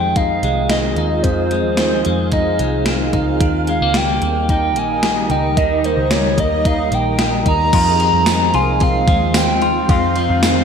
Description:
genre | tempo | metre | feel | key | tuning
dream pop | 111 BPM | 4/4 | straight | F minor | A4 = 440 Hz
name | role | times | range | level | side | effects
warbly nostalgic lead | melody | 0.0-10.6 s | C5 to Bb5 | -19 LUFS | equal | chorus, digital delay
granular cloud pad | sustained chords | 0.0-10.6 s | Eb3 to F5 | -22 LUFS | right 2 dB | built-in reverb
clean electric guitar | arpeggios | 0.0-10.6 s | F2 to F4 | -21 LUFS | left 2 dB | lush chorus, digital delay
vintage muted picked electric bass | bass | 0.0-10.6 s | Bb1 to F2 | -21 LUFS | equal | none
gated 80s digital drum machine | drums | 0.2-10.6 s | crash cymbal, hi-hat, kick drum, ride cymbal, snare drum, tambourine | -20 LUFS | equal | gated reverb, gated reverb snare, overdrive
vibraphone with soft mallets | texture | 7.9-10.6 s | Ab4 to C5 | -30 LUFS | right 8 dB | stereo widening, digital delay
room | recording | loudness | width
moderate plate reverb, RT60 3.0 s | bright 1980s-style digital production | -14 LUFS | side -6 dB against mid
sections
0.0-7.7 A section; 7.7-10.6 B section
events
none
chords
0.0 Fm7; 3.4 Eb; 7.7 Fm7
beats
0.16 0.70 | 1.25 1.78 2.33 2.87 | 3.41 3.95 4.49 5.03 | 5.57 6.11 6.65 7.19 | 7.73 8.27 8.81 9.35 | 9.89 10.43

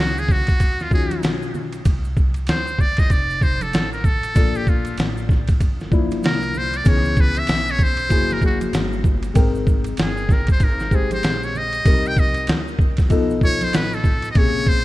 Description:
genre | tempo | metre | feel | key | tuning
hip hop, jazz-hop | 96 BPM | 4/4 | swing 60% on 16ths | unclear | A4 = 440 Hz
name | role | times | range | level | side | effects
trumpet with metal mute | melody | 0.0-14.8 s | F4 to G5 | -24 LUFS | equal | analog delay
dark grand piano | accompaniment | 0.0-14.8 s | C3 to G5 | -25 LUFS | left 4 dB | none
upright bass | bass | 0.0-14.8 s | F1 to Eb2 | -27 LUFS | equal | none
trip hop sampler-style drum kit | drums | 0.0-14.8 s | hi-hat, kick drum, ride cymbal, snare drum | -18 LUFS | equal | none
maracas and congas | percussion | 0.2-14.4 s | none | -34 LUFS | right 5 dB | none
room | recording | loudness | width
studio ambience | rough home demo mix | -16 LUFS | side -17 dB against mid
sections
0.0-14.4 A section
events
muted trumpet solo 0.0-14.4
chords
0.0 Ebm9; 1.9 Csus2; 3.1 F; 4.4 Bbmaj7; 6.9 Dbm7; 8.1 Gb9; 9.4 Abmaj9; 11.9 Cm7; 13.1 B7#11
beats
0.60 1.23 | 1.85 2.48 3.10 3.73 | 4.36 4.98 5.61 6.23 | 6.86 7.48 8.11 8.73 | 9.36 9.98 10.61 11.23 | 11.86 12.48 13.11 13.73 | 14.36

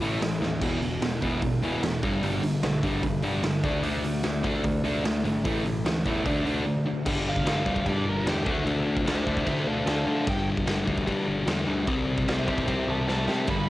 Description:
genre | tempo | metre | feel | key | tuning
punk rock | 149 BPM | 4/4 | straight | unclear | A4 = 438 Hz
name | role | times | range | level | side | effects
distorted electric guitar | riff | 0.0-7.0, 13.5-13.7 s | E2 to D4 | -32 LUFS | right 6 dB | distortion, cassette tape
sludgy distorted guitar | riff | 0.0-13.7 s | E2 to D4 | -27 LUFS | left 2 dB | overdrive, cassette tape
modern bright picked electric bass | bass | 0.0-13.7 s | E1 to D3 | -32 LUFS | right 1 dB | none
raw garage drum kit | drums | 0.0-13.6 s | crash cymbal, hi-hat, kick drum, snare drum, splash cymbal | -30 LUFS | right 1 dB | cassette tape
smooth overdriven lead guitar | melody | 7.3-13.7 s | F#4 to B5 | -32 LUFS | right 2 dB | cassette tape
room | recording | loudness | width
small room ambience | home recording on cassette | -24 LUFS | side -16 dB against mid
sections
0.0-7.1 A section; 7.1-13.7 B section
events
drum fill 0.4, 13.1-13.5; lead electric guitar solo 7.1-13.7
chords
0.0 A5; 0.6 E5; 2.0 G5; 3.6 D5; 5.4 A5; 6.3 D5; 7.1 G5; 8.5 D5; 10.3 G5; 11.9 C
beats
0.21 | 0.61 1.02 1.42 1.82 | 2.23 2.63 3.03 3.43 | 3.84 4.24 4.64 5.04 | 5.45 5.85 6.25 6.66 | 7.06 7.46 7.86 8.26 | 8.66 9.06 9.47 9.87 | 10.27 10.67 11.07 11.47 | 11.88 12.28 12.68 13.08 | 13.48

